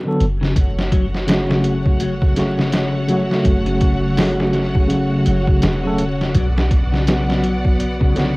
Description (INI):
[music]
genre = trip hop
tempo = 83 BPM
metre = 4/4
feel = swing 59% on 16ths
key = F# minor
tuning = A4 = 441 Hz
[part]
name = bright tine electric piano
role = accompaniment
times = 0.0-8.4 s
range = C#3 to A4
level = -20 LUFS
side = equal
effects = tremolo, low-pass filter, cassette tape, tape echo
[part]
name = soft 808-style bass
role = bass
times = 0.2-8.4 s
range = E1 to B1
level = -23 LUFS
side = equal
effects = none
[part]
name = trip hop sampler-style drum kit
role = drums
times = 0.2-8.4 s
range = hi-hat, kick drum, snare drum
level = -18 LUFS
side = equal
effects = overdrive, cassette tape
[part]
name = clean electric guitar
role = arpeggios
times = 0.4-8.4 s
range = C#3 to F#3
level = -23 LUFS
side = left 2 dB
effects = analog chorus, cassette tape, tape echo
[part]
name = bright studio string section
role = sustained chords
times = 0.6-8.4 s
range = A3 to F#5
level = -26 LUFS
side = equal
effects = cassette tape
[sound]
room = little or no reverb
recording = home recording on cassette, vinyl crackle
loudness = -15 LUFS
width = side -24 dB against mid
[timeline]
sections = 0.0-8.4 A section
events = none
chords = 0.0 Bm; 0.6 F#m; 6.3 Bm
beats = | 0.56 1.29 2.01 2.73 | 3.46 4.18 4.90 5.63 | 6.35 7.07 7.79